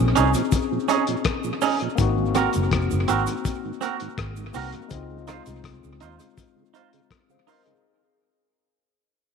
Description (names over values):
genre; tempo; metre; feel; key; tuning
lovers rock reggae; 82 BPM; 4/4; straight; unclear; A4 = 441 Hz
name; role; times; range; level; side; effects
barky tine electric piano; accompaniment; 0.0-8.0 s; Ab3 to F5; -28 LUFS; left 12 dB; overdrive, tape echo
mellow tonewheel organ; accompaniment; 0.0-7.7 s; Ab2 to Ab4; -31 LUFS; right 9 dB; chorus vibrato, slow rotary speaker
vintage muted fingered electric bass; bass; 0.0-6.2 s; F1 to Eb2; -25 LUFS; right 1 dB; none
twangy electric guitar; stabs; 0.2-7.6 s; C4 to C5; -25 LUFS; right 9 dB; none
cloth-damped thuddy drum kit; drums; 0.2-7.8 s; hi-hat, kick drum, rim click; -27 LUFS; left 3 dB; tape echo
cabasa; percussion; 0.2-7.6 s; none; -40 LUFS; right 15 dB; tape echo
room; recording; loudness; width
moderate echo chamber reverb, RT60 2.3 s; 1960s-style stereo with parts hard left and right; -21 LUFS; side -6 dB against mid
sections
0.0-7.8 A section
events
fade-out 0.0-7.8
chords
0.0 Bbm11; 2.0 Ab9; 4.9 Dbmaj9